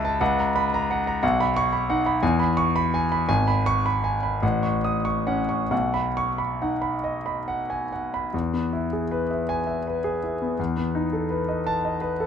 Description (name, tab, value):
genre	classical, romantic character piece for solo piano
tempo	44-61 BPM (dotted quarters)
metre	6/8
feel	rubato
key	E major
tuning	A4 = 440 Hz
part	warm concert grand piano	solo	0.0-12.3 s	G#1 to D#6	-22 LUFS	equal	none
room	moderate recital hall reverb, RT60 1.3 s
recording	close, detailed microphones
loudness	-22 LUFS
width	side -8 dB against mid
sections	0.0-8.3 A section; 8.3-12.3 B section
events	none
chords	0.2 F#/C#; 1.2 B; 2.2 E; 3.3 G#madd11; 4.4 F#m/A; 5.7 B; 8.3 E; 10.6 B7/E